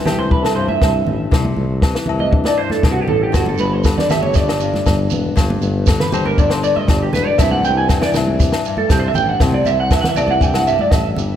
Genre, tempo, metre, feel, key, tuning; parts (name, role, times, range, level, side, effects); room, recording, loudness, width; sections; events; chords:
highlife guitar band; 119 BPM; 4/4; straight; A4 = 440 Hz
flamenco guitar; accompaniment; 0.0-11.4 s; G2 to G4; -22 LUFS; left 5 dB
electric guitar through a small old amp; arpeggios; 0.1-11.1 s; F#4 to Ab5; -19 LUFS; right 3 dB; analog chorus, tape echo
warm tuba; bass; 0.1-11.4 s; E1 to C2; -21 LUFS; equal
compact cocktail drum kit; drums; 0.1-11.0 s; kick drum, snare drum; -17 LUFS; left 1 dB
agogo bells; percussion; 0.1-11.1 s; -29 LUFS; left 4 dB
congas; percussion; 0.1-11.3 s; -26 LUFS; right 2 dB
shekere; percussion; 3.3-11.3 s; -27 LUFS; right 5 dB
light reverb; -13 LUFS; side -10 dB against mid
0.0-11.4 A section
clean electric guitar solo 0.0-11.4
0.0 Cadd9; 3.3 G; 7.4 Cadd9